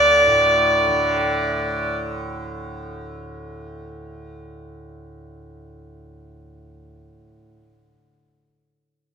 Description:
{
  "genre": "indian classical, Hindustani",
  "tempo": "free time",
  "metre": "none",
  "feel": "none",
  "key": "unclear",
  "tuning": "A4 = 438 Hz",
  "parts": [
    { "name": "dark violin", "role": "melody", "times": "0.0-1.9 s", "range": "D5", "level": "-16 LUFS", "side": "equal", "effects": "none" },
    { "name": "tanpura", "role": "drone", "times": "0.0-8.0 s", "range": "D2 to D3", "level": "-29 LUFS", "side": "right 1 dB", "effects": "none" }
  ],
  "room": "moderate recital hall reverb, RT60 1.6 s",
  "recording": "minimal, uncompressed stereo recording",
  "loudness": "-17 LUFS",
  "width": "side -6 dB against mid",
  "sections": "0.0-1.1 A section",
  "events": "none",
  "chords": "none",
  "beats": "free time"
}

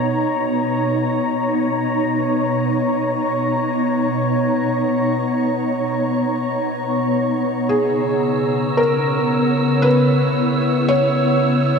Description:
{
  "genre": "ambient",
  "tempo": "57 BPM",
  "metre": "3/4",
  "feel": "straight",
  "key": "B major",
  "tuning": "A4 = 440 Hz",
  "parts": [
    { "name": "glassy FM pad", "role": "sustained chords", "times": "0.0-11.8 s", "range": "B2 to A#5", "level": "-17 LUFS", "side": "equal", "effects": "ensemble chorus, built-in reverb" },
    { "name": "felt-muted upright piano", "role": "melody", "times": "7.7-11.8 s", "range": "G#4 to C#5", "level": "-19 LUFS", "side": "equal", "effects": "diffuse ambient delay" },
    { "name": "bowed-like drone", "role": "drone", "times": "8.5-11.8 s", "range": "B3 to C#5", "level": "-26 LUFS", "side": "equal", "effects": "built-in reverb" },
    { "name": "wind-like tuned noise texture", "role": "texture", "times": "8.2-11.8 s", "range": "E6", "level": "-27 LUFS", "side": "right 5 dB", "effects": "built-in reverb" }
  ],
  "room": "wet cathedral reverb, RT60 6.1 s",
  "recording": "none",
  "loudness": "-16 LUFS",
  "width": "side -5 dB against mid",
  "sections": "0.0-11.8 A section",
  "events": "none",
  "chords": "0.0 Bmaj9; 7.7 C#m7",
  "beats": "0.24 | 1.29 2.35 3.40 | 4.46 5.53 6.61 | 7.69 8.76 9.83 | 10.89"
}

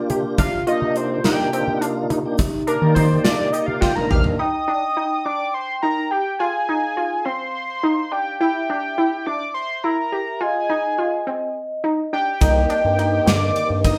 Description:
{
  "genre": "progressive instrumental, band music in an uneven meter",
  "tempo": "210 BPM (eighths)",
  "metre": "7/8",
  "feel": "straight",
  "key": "C minor",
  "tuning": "A4 = 441 Hz",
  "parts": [
    { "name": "fat analog lead", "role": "melody", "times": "0.0-14.0 s", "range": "Bb4 to F6", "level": "-26 LUFS", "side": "equal", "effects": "chorus" },
    { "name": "vibraphone with medium mallets", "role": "second line", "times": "0.0-14.0 s", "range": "Eb4 to G5", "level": "-29 LUFS", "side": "equal", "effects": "none" },
    { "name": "tonewheel organ", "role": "accompaniment", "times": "0.0-4.4, 12.4-14.0 s", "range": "Eb3 to D5", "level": "-28 LUFS", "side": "equal", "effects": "overdrive, chorus vibrato, slow rotary speaker" },
    { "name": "glassy wavetable pluck", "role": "arpeggios", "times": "0.0-14.0 s", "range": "D3 to G4", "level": "-27 LUFS", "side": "equal", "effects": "chorus" },
    { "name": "round analog bass", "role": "bass", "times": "0.1-4.2, 12.4-13.9 s", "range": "Bb1 to Eb3", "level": "-25 LUFS", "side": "equal", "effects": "none" },
    { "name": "gated 80s drum kit", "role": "drums", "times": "0.1-4.4, 12.4-14.0 s", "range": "hi-hat, kick drum, ride cymbal, snare drum, toms", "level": "-24 LUFS", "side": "equal", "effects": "none" },
    { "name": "tube shaker", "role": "percussion", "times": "0.4-3.8, 12.4-14.0 s", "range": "none", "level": "-44 LUFS", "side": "equal", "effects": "none" }
  ],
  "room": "wet studio reverb, RT60 0.6 s",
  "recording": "band playing live in one room",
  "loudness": "-21 LUFS",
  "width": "mono",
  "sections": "0.0-4.4 A section; 4.4-14.0 B section",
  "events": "analog synth lead solo 0.0-4.4; drum fill 3.8-4.4",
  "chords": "0.4 Cm9; 4.4 Ebmaj7; 6.4 Fm7; 8.4 C9/D; 10.4 Fm7; 12.4 Cm7",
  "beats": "0.10 | 0.39 0.68 0.96 1.25 1.53 1.82 2.11 | 2.40 2.68 2.97 3.25 3.54 3.83 4.11 | 4.40 4.69 4.97 5.26 5.55 5.83 6.12 | 6.41 6.69 6.98 7.26 7.55 7.84 8.12 | 8.41 8.70 8.98 9.27 9.56 9.84 10.13 | 10.41 10.70 10.99 11.27 11.56 11.84 12.13 | 12.42 12.70 12.99 13.27 13.56 13.85"
}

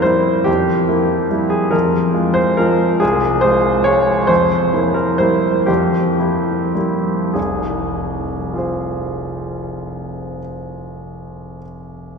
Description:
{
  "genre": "classical, piano waltz",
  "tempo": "96-149 BPM",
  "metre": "3/4",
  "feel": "rubato",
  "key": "F minor",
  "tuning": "A4 = 437 Hz",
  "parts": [
    { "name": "clear concert grand piano", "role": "solo", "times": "0.0-12.2 s", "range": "F1 to Db5", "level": "-15 LUFS", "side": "equal", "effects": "none" }
  ],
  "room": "wet cathedral reverb, RT60 4.8 s",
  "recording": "minimal, uncompressed stereo recording",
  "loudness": "-14 LUFS",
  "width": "side -5 dB against mid",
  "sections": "0.0-7.4 A section; 7.4-10.9 B section",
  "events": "slowing down 3.6-7.4",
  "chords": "0.0 C7/F; 1.7 Fm; 4.3 C7/F; 7.4 Fm",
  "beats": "0.04 | 0.47 0.89 1.31 | 1.73 2.15 2.59 | 3.02 3.44 3.86 | 4.29 4.73 5.21 | 5.68 6.18 6.75 | 7.36 7.94 8.54 | 9.13 9.71 10.31"
}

